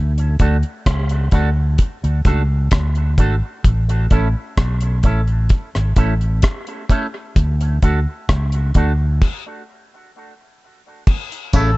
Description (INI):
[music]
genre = dub reggae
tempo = 65 BPM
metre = 4/4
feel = straight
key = unclear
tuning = A4 = 442 Hz
[part]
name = fretless electric bass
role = bass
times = 0.0-11.8 s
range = G#1 to D2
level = -16 LUFS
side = equal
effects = none
[part]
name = deep reggae drum kit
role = drums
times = 0.2-11.8 s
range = crash cymbal, hi-hat, kick drum, rim click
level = -17 LUFS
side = equal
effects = none
[part]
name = electric guitar with an envelope filter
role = accompaniment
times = 0.4-11.7 s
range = A3 to A4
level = -26 LUFS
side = right 3 dB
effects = wide subtle chorus, dub echo
[part]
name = muted clav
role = arpeggios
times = 11.5-11.7 s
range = C#3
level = -24 LUFS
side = left 5 dB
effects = none
[part]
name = tambourine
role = percussion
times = 11.5-11.8 s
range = none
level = -32 LUFS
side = right 5 dB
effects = none
[part]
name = melodica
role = melody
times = 11.6-11.8 s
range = A4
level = -21 LUFS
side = left 1 dB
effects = none
[sound]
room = studio reverb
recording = echo-heavy mix, nothing above 8.0 kHz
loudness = -15 LUFS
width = side -21 dB against mid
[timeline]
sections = 0.0-11.1 A section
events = stop 9.2-11.1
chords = 0.0 D; 3.6 A; 7.4 D5; 11.1 A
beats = 0.86 1.79 2.72 | 3.65 4.57 5.50 6.43 | 7.36 8.29 9.22 10.14 | 11.07